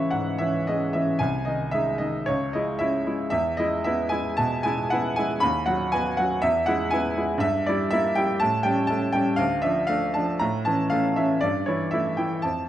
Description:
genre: classical, romantic character piece for solo piano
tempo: 106-125 BPM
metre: 4/4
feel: rubato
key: unclear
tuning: A4 = 441 Hz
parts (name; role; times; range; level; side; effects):
- bright baby grand piano; solo; 0.0-12.7 s; B#1 to B5; -22 LUFS; equal; none
room: moderate recital hall reverb, RT60 1.4 s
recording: dark, warm production, nothing above 10.3 kHz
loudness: -22 LUFS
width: side -12 dB against mid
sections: 0.0-12.7 A section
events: none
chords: 0.0 C#m; 1.2 G#/B#; 2.3 C#m; 3.3 E; 5.4 B/D#; 6.4 E; 7.4 Edim/G; 8.4 A7; 9.4 Dm; 10.4 A; 11.4 A5/G

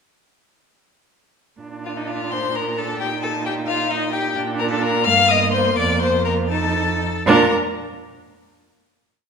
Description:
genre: quick classical-period movement for string quartet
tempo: 77-89 BPM (dotted quarters)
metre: 6/8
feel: rubato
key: Bb major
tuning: A4 = 440 Hz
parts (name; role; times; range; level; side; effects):
- warm viola; accompaniment; 1.6-7.5 s; Bb3 to Eb4; -24 LUFS; right 3 dB; none
- rich cello; bass; 1.6-7.5 s; F2 to Bb2; -24 LUFS; right 4 dB; none
- rich violin; melody; 1.8-7.5 s; Eb5 to F6; -22 LUFS; left 8 dB; none
- rich violin; second line; 1.9-7.5 s; Eb4 to F5; -22 LUFS; left 2 dB; none
room: wet recital hall reverb, RT60 1.5 s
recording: minimal, uncompressed stereo recording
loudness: -17 LUFS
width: side -6 dB against mid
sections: 1.6-7.3 A section; 7.3-8.7 final chord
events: none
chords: 1.6 Bb; 3.0 Eb5/Bb; 4.4 Bb; 5.1 Eb69/G; 5.8 Bb5/F; 6.5 F7; 7.3 Bb

